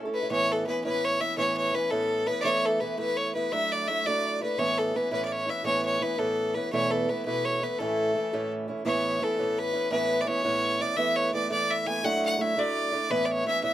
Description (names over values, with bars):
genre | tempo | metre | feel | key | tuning
celtic folk | 112 BPM (dotted quarters) | 6/8 | straight | A major | A4 = 440 Hz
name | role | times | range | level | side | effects
fingerpicked acoustic archtop guitar | accompaniment | 0.0-13.7 s | E2 to A4 | -29 LUFS | right 2 dB | none
clear fiddle | melody | 0.1-13.7 s | A4 to G#5 | -27 LUFS | left 1 dB | none
room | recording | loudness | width
light reverb | close, detailed microphones | -24 LUFS | side -12 dB against mid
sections
0.3-8.8 A section; 8.8-13.7 A section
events
none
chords
0.3 Aadd9; 2.4 Esus4; 3.5 Dadd9/F#; 4.6 Aadd9; 6.7 Esus4; 7.8 A; 8.8 Aadd9; 11.0 Esus4; 12.0 Dadd9/F#; 13.1 Aadd9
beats
| 0.31 0.84 | 1.38 1.91 | 2.45 2.98 | 3.51 4.05 | 4.58 5.12 | 5.65 6.18 | 6.72 7.25 | 7.78 8.32 | 8.85 9.38 | 9.91 10.44 | 10.97 11.51 | 12.04 12.56 | 13.09 13.62